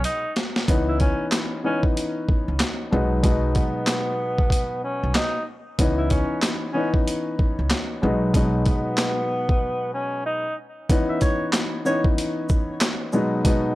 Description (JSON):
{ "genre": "hip hop, boom-bap hip-hop", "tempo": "94 BPM", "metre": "4/4", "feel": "swing 61% on 16ths", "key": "C# minor", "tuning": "A4 = 440 Hz", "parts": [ { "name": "breathy tenor saxophone", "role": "melody", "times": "0.0-12.0 s", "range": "B3 to E5", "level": "-27 LUFS", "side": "equal", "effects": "high-pass filter, low-pass filter" }, { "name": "dark baby grand piano", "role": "accompaniment", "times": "0.0-13.8 s", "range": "B2 to D#4", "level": "-25 LUFS", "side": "left 1 dB", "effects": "cassette tape, high-pass filter, low-pass filter" }, { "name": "upright bass", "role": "bass", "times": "0.0-8.7 s", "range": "B1 to C#2", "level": "-25 LUFS", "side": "equal", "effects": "none" }, { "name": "boom bap sampler-style drum kit", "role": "drums", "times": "0.0-13.6 s", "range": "handclaps, hi-hat, kick drum, shaker, snare drum", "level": "-22 LUFS", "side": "equal", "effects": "none" } ], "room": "studio ambience", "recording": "dry, gritty hardware recording", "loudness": "-20 LUFS", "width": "side -17 dB against mid", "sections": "0.0-10.9 A section; 10.9-13.8 B section", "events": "drum fill 0.0-0.7; break 9.6-10.9", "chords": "0.0 G#m7/B; 0.7 C#m9; 2.9 G#m7/B; 5.8 C#m9; 8.0 G#m7/B; 10.9 C#m9; 13.1 G#m7/B" }